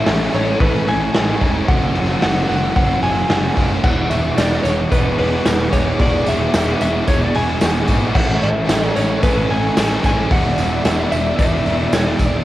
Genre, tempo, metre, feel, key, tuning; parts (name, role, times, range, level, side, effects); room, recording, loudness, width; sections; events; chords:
rock, shoegaze and dream pop; 111 BPM; 4/4; straight; E mixolydian; A4 = 440 Hz
direct-recorded clean electric guitar; melody; 0.0-12.4 s; B4 to G#5; -22 LUFS; equal; cassette tape, analog delay
lush unison pad; sustained chords; 0.0-12.4 s; G#4 to E6; -27 LUFS; equal; chorus, cassette tape
biting overdriven guitar; riff; 0.0-12.4 s; E3 to D5; -27 LUFS; right 1 dB
crunchy overdriven guitar; riff; 0.0-12.4 s; E2 to F#4; -23 LUFS; right 6 dB; reverse reverb, cassette tape
thick fuzz guitar; riff; 0.0-12.4 s; E2 to A3; -24 LUFS; left 6 dB; distortion, lush chorus, cassette tape
fuzz picked electric bass; bass; 0.1-12.4 s; E1 to A1; -22 LUFS; equal; overdrive
raw garage drum kit; drums; 0.1-12.3 s; crash cymbal, hi-hat, kick drum, snare drum; -19 LUFS; equal; cassette tape
tambourine; percussion; 3.8-12.3 s; -37 LUFS; right 5 dB
light reverb; home recording on cassette; -14 LUFS; side -15 dB against mid
0.0-12.4 A section
0.0 Amaj7; 1.7 F#5; 3.8 E13; 8.2 Amaj7; 10.3 E5